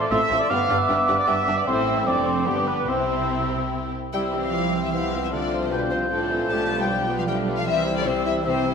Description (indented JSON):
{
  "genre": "quick classical-period movement for symphony orchestra",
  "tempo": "153 BPM",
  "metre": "3/4",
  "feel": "rubato",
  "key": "C major",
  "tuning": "A4 = 438 Hz",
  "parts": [
    { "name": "mellow cor anglais", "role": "second line", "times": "0.0-8.7 s", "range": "G4 to F5", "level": "-29 LUFS", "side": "right 2 dB", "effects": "none" },
    { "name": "mellow hollow silver concert flute", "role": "second line", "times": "0.0-8.7 s", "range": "C6 to G6", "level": "-28 LUFS", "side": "equal", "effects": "none" },
    { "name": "warm bassoon", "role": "accompaniment", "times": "0.0-8.7 s", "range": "E3 to C4", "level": "-30 LUFS", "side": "right 1 dB", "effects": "none" },
    { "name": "warm trumpet section", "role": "stabs", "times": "0.0-3.7 s", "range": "G4 to F5", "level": "-27 LUFS", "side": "equal", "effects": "none" },
    { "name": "warm chamber violin section", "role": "melody", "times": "0.1-8.7 s", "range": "G4 to A5", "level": "-29 LUFS", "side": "left 6 dB", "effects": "none" },
    { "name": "rich studio violin section", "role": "second line", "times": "0.1-8.7 s", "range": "C4 to C5", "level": "-33 LUFS", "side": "left 5 dB", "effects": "none" },
    { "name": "warm studio viola section", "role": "accompaniment", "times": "0.1-8.7 s", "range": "D3 to E4", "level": "-31 LUFS", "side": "equal", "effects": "none" },
    { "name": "rich chamber double bass section", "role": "bass", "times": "0.1-8.7 s", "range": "F1 to C2", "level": "-32 LUFS", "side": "right 3 dB", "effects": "none" },
    { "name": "warm chamber cello section", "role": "bass", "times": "0.1-8.7 s", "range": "F2 to A3", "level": "-30 LUFS", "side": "right 3 dB", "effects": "none" },
    { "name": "mellow French horn section", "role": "sustained chords", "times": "0.5-8.7 s", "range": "B3 to F4", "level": "-31 LUFS", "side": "left 3 dB", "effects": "none" }
  ],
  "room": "wet scoring stage reverb, RT60 1.9 s",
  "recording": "minimal, uncompressed stereo recording",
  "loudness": "-20 LUFS",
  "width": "side -6 dB against mid",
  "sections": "0.0-4.1 A section; 4.1-8.7 B section",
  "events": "none",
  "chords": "0.5 G; 1.7 Am; 2.1 Dm7/F; 2.5 G; 2.9 C; 5.3 Dm7/C; 6.5 G7/B; 7.7 C",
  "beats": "0.11 | 0.50 0.89 1.28 | 1.67 2.07 2.48 | 2.88 3.30 3.72 | 4.14 4.54 4.93 | 5.33 5.72 6.11 | 6.50 6.89 7.28 | 7.67 8.06 8.45"
}